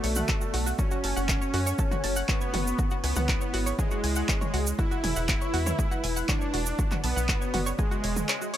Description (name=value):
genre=melodic techno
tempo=120 BPM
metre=4/4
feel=straight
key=F# minor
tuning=A4 = 440 Hz
part: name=soft supersaw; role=melody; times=0.0-8.6 s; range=G#3 to E4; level=-32 LUFS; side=right 1 dB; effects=sidechain pumping, dub echo
part: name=dark analog pad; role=sustained chords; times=0.0-8.6 s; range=G#3 to E5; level=-38 LUFS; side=left 2 dB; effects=chorus, phaser, sidechain pumping
part: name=analog pluck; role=arpeggios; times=0.0-8.6 s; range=F#4 to A6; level=-35 LUFS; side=right 1 dB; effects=chorus, sidechain pumping, dub echo
part: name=tight sequencer bass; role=bass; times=0.0-8.2 s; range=E1 to F#2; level=-30 LUFS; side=equal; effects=sidechain pumping
part: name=punchy analog drum machine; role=drums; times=0.0-8.6 s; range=handclaps, hi-hat, toms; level=-32 LUFS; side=equal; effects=none
part: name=cabasa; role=percussion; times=0.2-8.5 s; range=none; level=-36 LUFS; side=right 6 dB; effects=none
part: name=electronic kick drum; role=drums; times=0.3-7.9 s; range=none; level=-28 LUFS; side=equal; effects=none
room=digital ambience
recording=none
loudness=-24 LUFS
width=side -11 dB against mid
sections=0.0-8.6 A section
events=none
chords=0.0 Bm; 0.8 F#m; 2.8 C#m; 4.8 E; 6.8 Bm; 7.8 E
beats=0.29 | 0.79 1.29 1.79 2.29 | 2.79 3.29 3.79 4.29 | 4.79 5.29 5.79 6.29 | 6.79 7.29 7.79 8.29